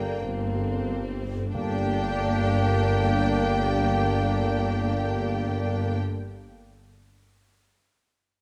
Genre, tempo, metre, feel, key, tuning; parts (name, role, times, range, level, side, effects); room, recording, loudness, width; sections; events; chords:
classical, slow romantic movement for symphony orchestra; 46 BPM; 4/4; rubato; G minor; A4 = 436 Hz
warm studio violin section; melody; 0.0-6.0 s; G5; -38 LUFS; equal
clear clarinet; second line; 0.0-6.0 s; D4; -40 LUFS; equal
small flute group; second line; 0.0-6.0 s; D5; -39 LUFS; equal
warm studio violin section; second line; 0.0-6.0 s; Bb3 to G4; -38 LUFS; equal
dark studio viola section; accompaniment; 0.0-6.0 s; D3 to Bb3; -36 LUFS; equal
mellow bassoon; accompaniment; 0.0-6.0 s; Bb3; -35 LUFS; equal
mellow trumpet; stabs; 0.0-6.0 s; G4; -35 LUFS; equal
mellow tuba; bass; 0.0-6.0 s; G1; -35 LUFS; equal
warm studio cello section; bass; 0.0-6.0 s; G2; -32 LUFS; equal
warm studio double bass section; bass; 0.0-6.0 s; G1; -34 LUFS; equal
dark French horn section; sustained chords; 1.5-6.0 s; Bb3 to D4; -35 LUFS; equal
timpani; percussion; 1.5-6.0 s; barely audible
moderate scoring stage reverb, RT60 1.8 s; -25 LUFS; mono
0.0-1.5 A section; 1.5-6.7 B section
slowing down 0.0-1.5
0.0 Gm